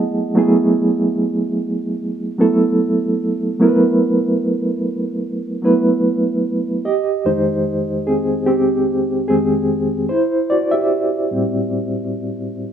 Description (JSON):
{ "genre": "R&B", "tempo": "74 BPM", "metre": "4/4", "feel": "swing 57% on 16ths", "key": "unclear", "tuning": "A4 = 440 Hz", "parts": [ { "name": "reed electric piano", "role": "solo", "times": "0.0-12.7 s", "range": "F2 to A5", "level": "-16 LUFS", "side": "right 1 dB", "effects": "fast tremolo" } ], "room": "light reverb", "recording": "rough home demo mix, small room ambience", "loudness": "-15 LUFS", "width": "side -8 dB against mid", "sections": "0.0-6.8 A section; 6.8-12.7 B section", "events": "reed electric piano fill 0.0-0.4; reed electric piano solo 6.8-12.7", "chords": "0.0 F#m11; 6.8 Fm9; 10.1 Am7", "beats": "| 0.36 1.17 1.98 2.79 | 3.60 4.41 5.22 6.04 | 6.85 7.66 8.47 9.28 | 10.09 10.90 11.71 12.52" }